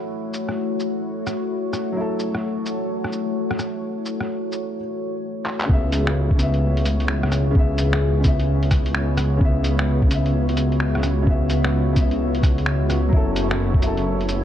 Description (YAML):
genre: future garage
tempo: 129 BPM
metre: 4/4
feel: swing 64% on 16ths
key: unclear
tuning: A4 = 440 Hz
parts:
  - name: felt-muted upright piano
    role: accompaniment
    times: 0.0-14.4 s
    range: C#3 to E5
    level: -27 LUFS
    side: left 1 dB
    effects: sidechain pumping, analog delay
  - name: deep dark ambient pad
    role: sustained chords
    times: 0.0-14.4 s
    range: A3 to C#5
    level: -26 LUFS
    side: left 2 dB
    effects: chorus, built-in reverb, sidechain pumping
  - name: lo-fi sampler-style drum kit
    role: drums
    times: 0.3-14.4 s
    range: cabasa, finger snaps, handclaps, hi-hat, rim click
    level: -28 LUFS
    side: equal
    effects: studio reverb
  - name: swelling detuned saw bass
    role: bass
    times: 5.7-14.4 s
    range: F#1 to C#2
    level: -21 LUFS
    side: equal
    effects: sidechain pumping
  - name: electronic kick drum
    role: drums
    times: 5.7-13.8 s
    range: none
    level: -18 LUFS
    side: equal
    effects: studio reverb
room: light reverb, digital ambience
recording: cassette tape, lossy compression artefacts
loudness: -19 LUFS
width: side -10 dB against mid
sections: 0.0-5.7 A section; 5.7-14.4 B section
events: filter sweep on felt piano 0.0-5.7; drum fill 5.5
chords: 0.0 F#m7; 5.7 C#m7; 13.1 F#m7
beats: | 0.11 0.57 1.04 1.50 | 1.97 2.43 2.90 3.36 | 3.83 4.29 4.76 5.22 | 5.69 6.15 6.62 7.08 | 7.55 8.01 8.48 8.94 | 9.41 9.87 10.34 10.80 | 11.27 11.73 12.20 12.66 | 13.13 13.59 14.06